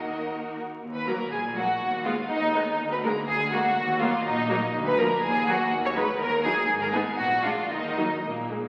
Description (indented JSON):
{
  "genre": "quick classical-period movement for string orchestra",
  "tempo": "122 BPM",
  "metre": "2/4",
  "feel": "uneven beats, rubato",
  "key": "Eb minor",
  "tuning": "A4 = 443 Hz",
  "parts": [
    { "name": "rich studio violin section", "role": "melody", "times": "0.0-8.2 s", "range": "Eb5 to Db6", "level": "-38 LUFS", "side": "equal", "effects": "none" },
    { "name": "clear studio violin section", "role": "second line", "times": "0.0-8.2 s", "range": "Eb4 to Db5", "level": "-28 LUFS", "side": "equal", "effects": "none" },
    { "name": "rich studio viola section", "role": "accompaniment", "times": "0.0-8.7 s", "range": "F3 to Eb4", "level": "-33 LUFS", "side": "equal", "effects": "none" },
    { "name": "clear studio cello section", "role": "bass", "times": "0.0-8.7 s", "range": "D2 to Eb3", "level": "-36 LUFS", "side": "equal", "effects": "none" },
    { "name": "rich studio double bass section", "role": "bass", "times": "0.0-8.7 s", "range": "Ab1 to Eb2", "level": "-40 LUFS", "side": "equal", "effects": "none" }
  ],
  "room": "wet scoring stage reverb, RT60 1.7 s",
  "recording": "very old 78 rpm record, vinyl crackle",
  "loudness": "-26 LUFS",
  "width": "mono",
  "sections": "0.8-8.7 A section",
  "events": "none",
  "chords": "0.0 Ebm; 1.8 Abm/Eb; 2.8 Bb7/D; 3.8 Ebm; 4.7 Bb/D; 5.2 Ebm; 5.7 Abm/Eb; 6.2 Ebm; 6.7 Abm; 7.2 Bb7; 7.7 Ebm"
}